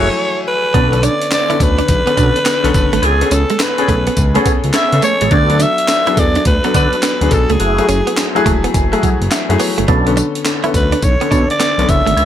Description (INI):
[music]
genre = R&B, new jack swing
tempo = 105 BPM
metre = 4/4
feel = swing 64% on 16ths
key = B dorian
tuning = A4 = 441 Hz
[part]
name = breathy alto saxophone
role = melody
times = 0.0-12.2 s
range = G#4 to E5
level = -17 LUFS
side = equal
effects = none
[part]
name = warm baby grand piano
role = accompaniment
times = 0.0-12.2 s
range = D3 to A5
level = -19 LUFS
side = left 5 dB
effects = none
[part]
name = percussive tonewheel organ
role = stabs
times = 0.0-12.2 s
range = A3 to A4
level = -22 LUFS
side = right 1 dB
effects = overdrive, chorus vibrato, slow rotary speaker, digital delay
[part]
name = smooth synth bass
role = bass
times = 0.0-12.2 s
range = E1 to D3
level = -17 LUFS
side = equal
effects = none
[part]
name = direct-recorded clean electric guitar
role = riff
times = 0.7-12.1 s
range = F#3 to E4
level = -21 LUFS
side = right 5 dB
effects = wide subtle chorus
[part]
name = breakbeat sampler-style drum kit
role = drums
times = 0.7-12.2 s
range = handclaps, hi-hat, kick drum, snare drum, tambourine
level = -17 LUFS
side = equal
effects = none
[sound]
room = little or no reverb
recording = none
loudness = -11 LUFS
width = side -10 dB against mid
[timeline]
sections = 0.7-12.2 A section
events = grand piano fill 0.0-0.7, 8.2-9.9; band accent 0.0-0.7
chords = 0.0 F#m9; 0.7 Bm9; 3.0 Amaj9; 5.3 D6; 7.6 F#m9; 9.9 Bm9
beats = 0.17 | 0.74 1.31 1.89 2.46 | 3.03 3.60 4.17 4.74 | 5.31 5.88 6.46 7.03 | 7.60 8.17 8.74 9.31 | 9.88 10.46 11.03 11.60 | 12.17